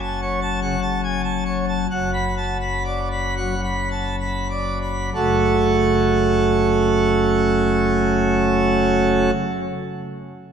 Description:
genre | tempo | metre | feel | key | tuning
classical, organ toccata | 61-103 BPM | 4/4 | straight | F# minor | A4 = 437 Hz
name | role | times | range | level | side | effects
pipe organ, plenum | solo | 0.0-9.3 s | F#1 to B5 | -18 LUFS | right 1 dB | none
room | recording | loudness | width
wet church reverb, RT60 2.9 s | none | -18 LUFS | side -7 dB against mid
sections
0.0-5.1 A section; 5.1-9.1 B section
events
slowing down 0.0-5.1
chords
0.0 F#m; 1.9 Bm/F#; 5.1 F#m

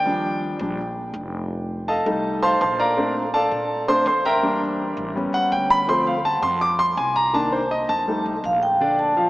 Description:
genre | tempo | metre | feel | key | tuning
jazz | 164 BPM | 4/4 | straight | unclear | A4 = 440 Hz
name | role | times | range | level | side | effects
clear concert grand piano | accompaniment | 0.0-9.3 s | D3 to D6 | -20 LUFS | equal | none
upright bass | bass | 0.0-9.3 s | F1 to Bb2 | -33 LUFS | equal | none
vibraphone with medium mallets | melody | 8.5-9.3 s | F5 to A5 | -18 LUFS | equal | none
room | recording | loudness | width
wet cathedral reverb, RT60 5.5 s | in a vast, echoing space, small speaker sound | -19 LUFS | side -18 dB against mid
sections
0.0-8.8 A section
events
grand piano solo 0.0-8.8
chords
0.1 Ebmaj7; 1.5 F7; 3.0 Bbmaj7; 4.4 Em7b5; 5.2 A7; 5.9 Dm7; 7.3 Cm7; 8.1 F7

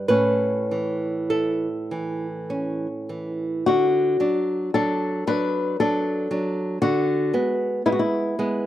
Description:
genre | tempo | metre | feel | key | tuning
romantic duo for nylon-string guitar and classical guitar | 48-59 BPM | 3/4 | rubato | D major | A4 = 440 Hz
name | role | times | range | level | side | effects
flamenco guitar | melody | 0.0-8.7 s | C#4 to B4 | -23 LUFS | left 3 dB | none
nylon-string guitar | accompaniment | 0.0-8.7 s | A2 to B4 | -24 LUFS | right 2 dB | slapback echo
room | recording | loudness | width
light reverb | recorded outdoors, with no room sound | -21 LUFS | side -13 dB against mid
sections
0.0-3.7 A section; 3.7-8.7 B section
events
none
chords
0.1 A; 3.7 D; 6.8 E7/D

